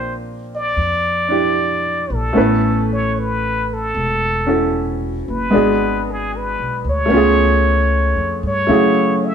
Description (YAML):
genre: jazz ballad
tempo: 76 BPM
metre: 4/4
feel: swing 68% on 8ths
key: unclear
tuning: A4 = 441 Hz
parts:
  - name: trumpet with plunger mute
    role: melody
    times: 0.0-9.3 s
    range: G#4 to E5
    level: -19 LUFS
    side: equal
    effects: none
  - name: bright upright piano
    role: accompaniment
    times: 0.0-9.3 s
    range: C#3 to G5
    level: -18 LUFS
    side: right 1 dB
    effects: none
  - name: upright bass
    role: bass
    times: 0.0-9.3 s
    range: E1 to G2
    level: -22 LUFS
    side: equal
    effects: none
room: moderate studio reverb, RT60 0.9 s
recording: band playing live in one room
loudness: -15 LUFS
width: side -7 dB against mid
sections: 0.0-9.3 A section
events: none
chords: 0.0 A#69; 2.4 Aadd9; 5.5 G#m7b5; 7.1 C#7b13; 8.7 F#m9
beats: 0.76 1.56 | 2.35 3.15 3.94 4.73 | 5.53 6.32 7.11 7.90 | 8.69